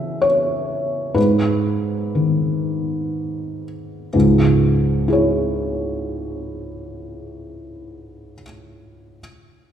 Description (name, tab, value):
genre	neoclassical minimalist piano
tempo	58-70 BPM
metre	3/4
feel	rubato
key	C# minor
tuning	A4 = 441 Hz
part	felt-muted upright piano	solo	0.0-9.2 s	C#2 to E5	-18 LUFS	equal	none
room	wet scoring stage reverb, RT60 2.2 s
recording	recorded in a church or concert hall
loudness	-17 LUFS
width	side -9 dB against mid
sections	0.0-4.1 A section; 4.1-7.0 B section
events	slowing down 0.0-4.1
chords	0.0 C#m; 1.2 G#m; 4.1 C#m